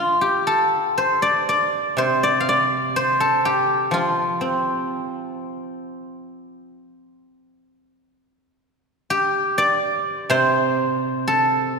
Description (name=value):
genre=chinese traditional, Chinese solo plucked strings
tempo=63 BPM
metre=4/4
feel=rubato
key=unclear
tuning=A4 = 440 Hz
part: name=guzheng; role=solo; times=0.0-11.8 s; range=C3 to F5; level=-18 LUFS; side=equal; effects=none
room=wet church reverb, RT60 2.9 s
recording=recorded in a church or concert hall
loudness=-18 LUFS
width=side -4 dB against mid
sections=0.0-11.8 A section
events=none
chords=none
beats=0.99 1.99 2.96 | 3.92 4.86 5.80 6.76 | 7.69 8.63 9.58 10.54 | 11.52